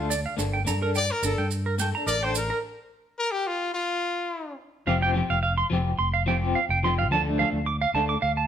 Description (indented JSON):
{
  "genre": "highlife guitar band",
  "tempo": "107 BPM",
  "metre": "4/4",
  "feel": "swing 53% on 16ths",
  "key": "F major",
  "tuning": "A4 = 437 Hz",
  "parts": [
    { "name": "brilliant trumpet", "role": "melody", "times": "0.0-4.5 s", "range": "F4 to D5", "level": "-27 LUFS", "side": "left 2 dB", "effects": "none" },
    { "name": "electric guitar at the edge of break-up", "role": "accompaniment", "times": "0.0-8.1 s", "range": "F3 to A4", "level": "-29 LUFS", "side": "left 3 dB", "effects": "tremolo" },
    { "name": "fingered electric bass", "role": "bass", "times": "0.0-8.5 s", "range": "F1 to G2", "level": "-28 LUFS", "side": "equal", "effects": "none" },
    { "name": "clean electric guitar", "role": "arpeggios", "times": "0.1-8.5 s", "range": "Bb4 to D6", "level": "-26 LUFS", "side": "right 4 dB", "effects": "vibrato effect" },
    { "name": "maracas", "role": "percussion", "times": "0.1-2.5 s", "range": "none", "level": "-34 LUFS", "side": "right 7 dB", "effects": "none" }
  ],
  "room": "moderate stone room reverb, RT60 1.2 s",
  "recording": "band playing live in one room",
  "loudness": "-23 LUFS",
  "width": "side -9 dB against mid",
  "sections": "0.0-4.9 A section; 4.9-8.5 B section",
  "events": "stop 2.6-4.9",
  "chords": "0.4 Gmadd9; 2.6 N.C.; 4.9 Fsus2; 7.1 Dm",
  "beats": "| 0.38 0.94 1.50 2.07 | 2.63 3.19 3.75 4.31 | 4.87 5.43 5.99 6.55 | 7.10 7.66 8.22"
}